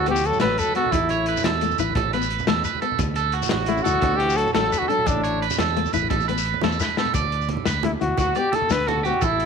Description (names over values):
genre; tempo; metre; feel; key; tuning
highlife guitar band; 116 BPM (dotted quarters); 12/8; straight; D major; A4 = 440 Hz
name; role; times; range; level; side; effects
mellow trumpet; melody; 0.0-9.5 s; D4 to B4; -23 LUFS; left 3 dB; none
breathy trombone; second line; 0.0-5.5 s; A2 to F#3; -32 LUFS; right 10 dB; none
electric guitar at the edge of break-up; arpeggios; 0.0-9.5 s; F#4 to D5; -25 LUFS; right 12 dB; wide subtle chorus, tape echo
fingered electric bass; bass; 0.0-9.5 s; A1 to E2; -28 LUFS; left 1 dB; none
fingerpicked steel-string acoustic guitar; accompaniment; 0.1-9.2 s; A3 to E4; -28 LUFS; left 14 dB; none
crunchy breakbeat drum kit; drums; 0.1-9.5 s; hi-hat, kick drum, snare drum; -28 LUFS; left 5 dB; none
shekere; percussion; 0.2-9.3 s; none; -32 LUFS; left 7 dB; none
congas; percussion; 0.3-9.4 s; none; -30 LUFS; right 9 dB; none
room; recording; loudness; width
light reverb; 1960s-style stereo with parts hard left and right; -19 LUFS; side -6 dB against mid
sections
0.0-7.2 A section; 7.2-9.5 B section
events
drum fill 6.6-7.2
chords
0.0 D; 0.9 A5; 3.0 D; 5.1 A5; 7.2 D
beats
0.42 | 0.93 1.45 1.97 2.48 | 3.00 3.52 4.04 4.55 | 5.07 5.59 6.11 6.63 | 7.15 7.67 8.19 8.71 | 9.23